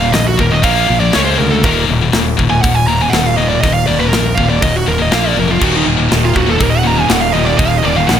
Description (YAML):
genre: heavy metal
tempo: 121 BPM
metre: 4/4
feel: straight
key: Eb harmonic minor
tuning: A4 = 440 Hz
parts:
  - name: high-gain lead guitar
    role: melody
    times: 0.0-8.2 s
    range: Eb4 to Bb5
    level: -16 LUFS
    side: right 5 dB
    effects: distortion
  - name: scooped high-gain guitar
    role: riff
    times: 0.0-8.2 s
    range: Eb2 to Db4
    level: -15 LUFS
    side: left 6 dB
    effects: distortion
  - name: fuzz fingered electric bass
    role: bass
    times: 0.0-8.2 s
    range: Eb1 to D2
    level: -17 LUFS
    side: right 1 dB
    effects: overdrive
  - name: tight metal drum kit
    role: drums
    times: 0.1-8.2 s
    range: crash cymbal, hi-hat, kick drum, snare drum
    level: -18 LUFS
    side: equal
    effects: none
  - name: distorted electric guitar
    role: riff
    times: 5.6-8.2 s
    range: Eb2 to Eb3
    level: -19 LUFS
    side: right 4 dB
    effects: distortion
room: small room ambience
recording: none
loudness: -10 LUFS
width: side -9 dB against mid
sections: 0.0-8.2 A section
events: lead electric guitar solo 0.0-8.2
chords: 0.0 Eb5; 0.6 Bb5; 1.1 Db5; 1.6 Eb5; 5.1 Bb5; 5.6 Eb5